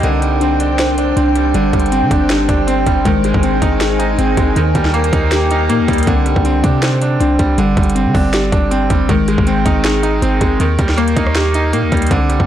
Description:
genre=hip hop, trap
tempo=159 BPM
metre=4/4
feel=half-time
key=C minor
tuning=A4 = 440 Hz
part: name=bright concert grand piano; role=accompaniment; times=0.0-12.5 s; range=D3 to Eb4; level=-18 LUFS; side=right 4 dB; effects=none
part: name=glassy FM pad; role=sustained chords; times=0.0-6.1, 12.1-12.5 s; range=D4 to Ab5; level=-20 LUFS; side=left 1 dB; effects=ensemble chorus, built-in reverb
part: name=muted felt-like synth keys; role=arpeggios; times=0.0-12.5 s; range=Eb3 to C5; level=-18 LUFS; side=left 3 dB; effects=chorus, digital delay
part: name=warm 808-style bass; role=bass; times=0.0-12.5 s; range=G1 to D3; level=-17 LUFS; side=equal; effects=none
part: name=trap drum kit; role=drums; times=0.0-12.5 s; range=hi-hat, kick drum, rim click, snare drum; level=-18 LUFS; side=equal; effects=none
room=light reverb, digital ambience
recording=blown-out, overdriven recording, overdrive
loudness=-12 LUFS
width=side -11 dB against mid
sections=0.0-6.1 A section; 6.1-12.5 B section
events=none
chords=0.0 Csus2; 1.5 Gsus4; 3.1 Ab; 4.6 Eb; 6.1 Csus2; 7.6 Gsus4; 9.1 Ab; 10.6 Eb

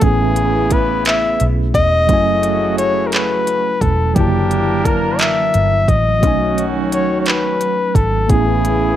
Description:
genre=slow six-eight R&B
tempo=58 BPM (dotted quarters)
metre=6/8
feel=straight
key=F# dorian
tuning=A4 = 440 Hz
part: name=clear flugelhorn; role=melody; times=0.0-9.0 s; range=G4 to E5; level=-17 LUFS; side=left 2 dB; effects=none
part: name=mellow tine electric piano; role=accompaniment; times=0.0-9.0 s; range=D3 to A5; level=-20 LUFS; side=right 2 dB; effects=medium stereo tremolo
part: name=warm horn section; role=stabs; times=0.0-9.0 s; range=C#3 to A#4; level=-24 LUFS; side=right 4 dB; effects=none
part: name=vintage muted picked electric bass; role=bass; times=0.0-9.0 s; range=E1 to B1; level=-19 LUFS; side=right 1 dB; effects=none
part: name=smooth R&B drum kit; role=drums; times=0.0-8.8 s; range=handclaps, hi-hat, kick drum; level=-18 LUFS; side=right 1 dB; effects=overdrive
room=little or no reverb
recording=none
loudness=-13 LUFS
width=side -11 dB against mid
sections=0.0-9.0 A section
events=none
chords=0.0 Amaj9; 2.1 F#m9; 4.2 F#7alt; 6.2 B13; 8.3 Amaj9

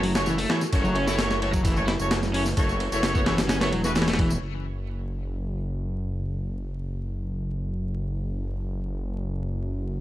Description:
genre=breakbeat, breaks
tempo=130 BPM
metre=4/4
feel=straight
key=F# minor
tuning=A4 = 440 Hz
part: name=dark analog pad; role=sustained chords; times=0.0-10.0 s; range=A3 to A5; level=-36 LUFS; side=right 1 dB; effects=chorus, sidechain pumping
part: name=crunchy overdriven guitar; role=riff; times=0.0-4.3 s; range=E3 to E4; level=-29 LUFS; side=left 1 dB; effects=tube saturation, low-pass filter, ping-pong delay
part: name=detuned saw bass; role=bass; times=0.0-10.0 s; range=E1 to F#1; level=-28 LUFS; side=equal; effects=none
part: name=breakbeat sampler-style drum kit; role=drums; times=0.0-4.3 s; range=hi-hat, kick drum, ride cymbal, snare drum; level=-26 LUFS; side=equal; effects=none
part: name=clear horn section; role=stabs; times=0.1-4.1 s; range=A3 to C#5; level=-29 LUFS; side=equal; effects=vintage 12-bit sampler grit, low-pass filter, ping-pong delay
part: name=tambourine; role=drums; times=0.1-4.4 s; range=none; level=-39 LUFS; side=right 2 dB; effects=overdrive, low-pass filter on perc, low-pass filter on room
room=little or no reverb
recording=vinyl crackle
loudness=-24 LUFS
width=side -14 dB against mid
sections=0.0-4.4 A section; 4.4-10.0 B section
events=none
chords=0.0 F#m7

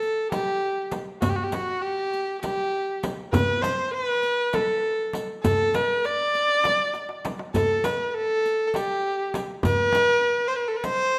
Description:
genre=Turkish makam ensemble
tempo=200 BPM (eighths)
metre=7/8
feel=straight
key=unclear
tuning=A4 = 440 Hz
part: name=clear kamancheh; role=melody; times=0.0-11.2 s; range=F#4-24c to D5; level=-25 LUFS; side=equal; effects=none
part: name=riq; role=percussion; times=0.0-11.0 s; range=none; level=-37 LUFS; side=equal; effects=none
part: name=darbuka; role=percussion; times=0.3-11.0 s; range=none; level=-33 LUFS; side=equal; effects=none
part: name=frame drum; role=percussion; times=0.3-11.0 s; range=none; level=-33 LUFS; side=equal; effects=none
room=moderate scoring stage reverb, RT60 1.6 s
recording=none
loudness=-25 LUFS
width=mono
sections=0.0-11.2 A section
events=drum fill 6.9-7.5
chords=none

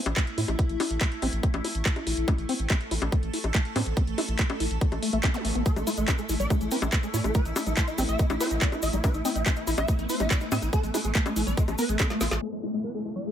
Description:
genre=psychedelic trance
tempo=142 BPM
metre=4/4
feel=straight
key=unclear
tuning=A4 = 440 Hz
part: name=evolving wavetable pad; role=sustained chords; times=0.0-13.3 s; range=A3 to A4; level=-34 LUFS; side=equal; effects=ensemble chorus, built-in reverb, phaser, sidechain pumping
part: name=round analog bass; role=bass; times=0.1-12.4 s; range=A1 to A2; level=-30 LUFS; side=equal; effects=none
part: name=drum and bass drum kit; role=drums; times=0.1-12.5 s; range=bongos, crash cymbal, handclaps, hi-hat, snare drum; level=-30 LUFS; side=left 2 dB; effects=low-pass filter on hats, low-pass filter on snare, low-pass filter on toms, low-pass filter on perc, low-pass filter on cymbals, low-pass filter on room
part: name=liquid acid bass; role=riff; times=0.2-13.3 s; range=G3 to E4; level=-33 LUFS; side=moving between left 5 dB and right 5 dB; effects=chorus, auto-pan, sidechain pumping, tape echo
part: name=electronic kick drum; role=drums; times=0.2-12.1 s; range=none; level=-25 LUFS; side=equal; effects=none
part: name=zap and downlifter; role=sound effects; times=5.3-5.4, 8.4-8.5, 12.4-13.3 s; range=none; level=-41 LUFS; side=right 1 dB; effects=none
part: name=swarming rave lead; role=melody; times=5.7-13.3 s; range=A3 to E5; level=-31 LUFS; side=equal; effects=chorus, phaser, sidechain pumping, tape echo
part: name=cabasa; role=percussion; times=5.7-12.4 s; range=none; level=-40 LUFS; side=left 1 dB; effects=none
room=light reverb, digital ambience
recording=low-pass filter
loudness=-24 LUFS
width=side -10 dB against mid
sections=0.0-12.4 A section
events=drum fill 12.1-12.4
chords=0.0 A5

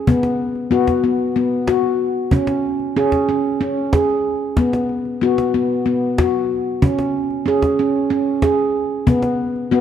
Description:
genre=world meditative, meditative tuned percussion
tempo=187 BPM (eighths)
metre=7/8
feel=straight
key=unclear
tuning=A4 = 440 Hz
part: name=handpan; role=arpeggios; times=0.0-9.8 s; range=B3 to G#4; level=-16 LUFS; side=equal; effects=none
part: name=cajon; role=percussion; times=0.1-9.6 s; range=none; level=-20 LUFS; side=equal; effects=none
room=wet echo chamber reverb, RT60 2.1 s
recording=dark, warm production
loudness=-16 LUFS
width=side -9 dB against mid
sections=0.0-9.8 A section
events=none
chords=0.1 B5; 2.3 C#5; 4.6 B5; 6.8 C#5; 9.1 B5

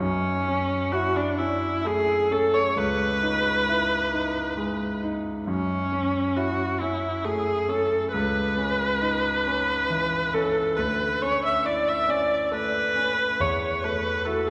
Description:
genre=classical, impressionist duo for viola and grand piano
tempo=45 BPM (dotted quarters)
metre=6/8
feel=rubato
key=F# minor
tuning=A4 = 441 Hz
part: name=warm viola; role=melody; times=0.0-14.5 s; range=C#4 to E5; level=-26 LUFS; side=equal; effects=none
part: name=warm concert grand piano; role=accompaniment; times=0.0-14.5 s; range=C#2 to F#4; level=-31 LUFS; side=equal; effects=none
room=wet church reverb, RT60 3.0 s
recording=recorded in a church or concert hall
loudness=-25 LUFS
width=mono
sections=0.0-14.5 A section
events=none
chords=0.0 F#m7; 2.8 C#m9; 5.5 F#m7; 8.1 C#m9; 10.8 Dsus2; 13.4 Esus24

